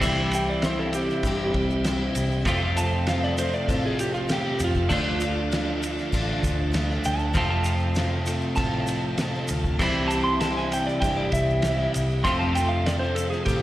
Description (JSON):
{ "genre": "folk rock and heartland rock", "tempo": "98 BPM", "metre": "4/4", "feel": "straight", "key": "unclear", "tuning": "A4 = 441 Hz", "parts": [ { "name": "picked plugged-in twelve-string acoustic guitar", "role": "accompaniment", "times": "0.0-13.6 s", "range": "F2 to G4", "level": "-31 LUFS", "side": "left 3 dB", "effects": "slapback echo" }, { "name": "tonewheel organ", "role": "sustained chords", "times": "0.0-13.6 s", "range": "G3 to A4", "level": "-36 LUFS", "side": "equal", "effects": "slow rotary speaker" }, { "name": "twelve-string electric guitar", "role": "riff", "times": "0.0-13.6 s", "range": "F2 to F4", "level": "-28 LUFS", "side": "right 1 dB", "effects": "none" }, { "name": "vintage muted picked electric bass", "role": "bass", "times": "0.0-13.6 s", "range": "A1 to A2", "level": "-28 LUFS", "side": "equal", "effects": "none" }, { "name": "cloth-damped thuddy drum kit", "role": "drums", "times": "0.0-13.6 s", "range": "crash cymbal, kick drum, ride cymbal, snare drum", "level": "-29 LUFS", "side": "equal", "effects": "none" }, { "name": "egg shaker", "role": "percussion", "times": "0.0-13.6 s", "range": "none", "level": "-41 LUFS", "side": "right 1 dB", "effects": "none" }, { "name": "electric slide guitar", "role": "second line", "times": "0.4-13.6 s", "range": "F4 to C6", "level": "-29 LUFS", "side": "right 1 dB", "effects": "slapback echo" } ], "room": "light reverb", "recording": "live gig heard through the venue's PA, recital hall reverb", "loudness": "-22 LUFS", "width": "side -14 dB against mid", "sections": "0.0-13.6 A section", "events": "electric slide guitar solo 0.0-13.6", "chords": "0.0 C; 2.5 F; 4.9 Dm; 7.4 F; 9.8 C; 12.2 F" }